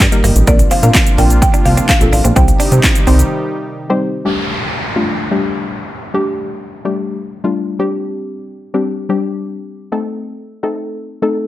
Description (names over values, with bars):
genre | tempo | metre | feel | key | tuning
dance-pop | 127 BPM | 4/4 | straight | G minor | A4 = 438 Hz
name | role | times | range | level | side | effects
warm analog pad | sustained chords | 0.0-4.2 s | Bb2 to G4 | -21 LUFS | right 1 dB | chorus, sidechain pumping
plucky analog bass | bass | 0.0-3.2 s | G1 to C3 | -11 LUFS | equal | sidechain pumping
house drum kit | drums | 0.0-3.3 s | handclaps, hi-hat, kick drum, shaker, snare drum | -12 LUFS | equal | overdrive
group handclap | percussion | 0.0-2.9 s | none | -24 LUFS | right 5 dB | none
soft round pluck | accompaniment | 0.1-11.5 s | G3 to C5 | -18 LUFS | left 2 dB | chorus, sidechain pumping
direct-recorded clean electric guitar | riff | 0.2-3.2 s | Bb3 to D4 | -22 LUFS | right 3 dB | wide subtle chorus
buzzing marimba with medium mallets | melody | 0.5-4.0 s | D5 to G5 | -19 LUFS | equal | tape echo
downlifter | sound effects | 4.3-8.0 s | none | -23 LUFS | equal | none
room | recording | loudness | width
little or no reverb | none | -12 LUFS | side -14 dB against mid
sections
0.0-4.3 A section; 4.3-11.5 B section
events
break 3.3-4.3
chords
0.5 Bbadd9; 2.4 Cm; 4.3 Gsus2; 7.8 Csus2; 9.9 Adim